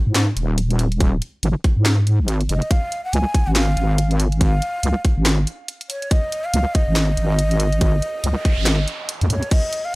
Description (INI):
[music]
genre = deep dubstep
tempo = 141 BPM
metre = 4/4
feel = swing 59% on 16ths, half-time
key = unclear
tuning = A4 = 441 Hz
[part]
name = wobble bass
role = bass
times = 0.1-9.4 s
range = D#1 to G#2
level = -18 LUFS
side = equal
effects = chorus, tube saturation
[part]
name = garage drum kit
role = drums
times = 0.2-9.8 s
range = crash cymbal, handclaps, hi-hat, snare drum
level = -23 LUFS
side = equal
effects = overdrive, small room ambience
[part]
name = electronic kick drum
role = drums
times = 1.0-9.6 s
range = none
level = -17 LUFS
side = equal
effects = overdrive, small room ambience
[part]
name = breathy ney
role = melody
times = 2.5-10.0 s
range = C#5 to G#5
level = -26 LUFS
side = equal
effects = dub echo
[part]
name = noise sweep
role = sound effects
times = 8.1-9.5 s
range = none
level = -31 LUFS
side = right 4 dB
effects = none
[sound]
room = digital ambience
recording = dry, gritty hardware recording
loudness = -17 LUFS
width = side -22 dB against mid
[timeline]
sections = 0.0-10.0 A section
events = noise sweep 8.1-9.5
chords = 0.0 G#5; 2.7 C#add9 (rootless)